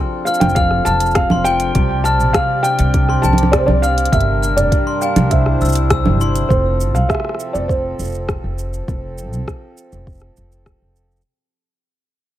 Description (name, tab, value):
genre	folktronica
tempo	101 BPM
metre	4/4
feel	straight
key	F major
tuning	A4 = 440 Hz
part	hand-pumped harmonium	sustained chords	0.0-11.2 s	F3 to D5	-26 LUFS	right 3 dB	none
part	concert harp	arpeggios	0.0-8.8 s	G2 to F4	-24 LUFS	left 4 dB	digital delay
part	felt-muted upright piano	melody	0.3-8.5 s	C5 to A5	-19 LUFS	right 2 dB	digital delay
part	glockenspiel with brass mallets	second line	0.3-6.4 s	G5 to F6	-24 LUFS	left 5 dB	ping-pong delay
part	organic electronic drum kit	drums	0.3-11.3 s	congas, hi-hat, rim click, shaker	-20 LUFS	right 1 dB	none
part	upright bass	bass	0.4-11.2 s	F1 to C2	-18 LUFS	equal	none
part	electronic kick drum	drums	0.6-10.8 s	none	-19 LUFS	equal	none
room	small room ambience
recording	none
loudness	-13 LUFS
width	side -13 dB against mid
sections	0.0-6.5 A section; 6.5-11.3 B section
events	fade-out 6.5-11.3; filter sweep on upright bass 6.5-11.3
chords	0.0 F; 1.8 Csus2; 4.1 Gm; 5.3 Cadd9; 6.5 F